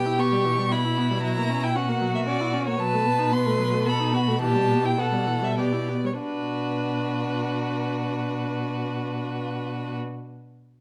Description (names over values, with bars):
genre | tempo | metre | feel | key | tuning
quick classical-period movement for string quartet | 94-117 BPM | 3/4 | straight | B minor | A4 = 438 Hz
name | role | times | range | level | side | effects
rich violin | melody | 0.0-10.0 s | B4 to C#6 | -31 LUFS | equal | none
warm violin | second line | 0.0-10.0 s | E4 to B4 | -32 LUFS | equal | none
dark viola | accompaniment | 0.0-10.0 s | E3 to E4 | -31 LUFS | equal | none
rich cello | bass | 0.0-10.0 s | B2 | -30 LUFS | equal | none
room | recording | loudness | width
light reverb | none | -25 LUFS | mono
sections
0.0-6.2 A section; 6.2-10.0 B section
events
slowing down 2.0-6.2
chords
0.0 Em/B; 1.2 F#7/B; 2.8 B7; 4.4 Em/B; 6.2 Bm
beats
0.19 0.72 | 1.24 1.75 2.27 | 2.79 3.32 3.86 | 4.41 4.98 5.58 | 6.21 6.83 7.46 | 8.08 8.71 9.34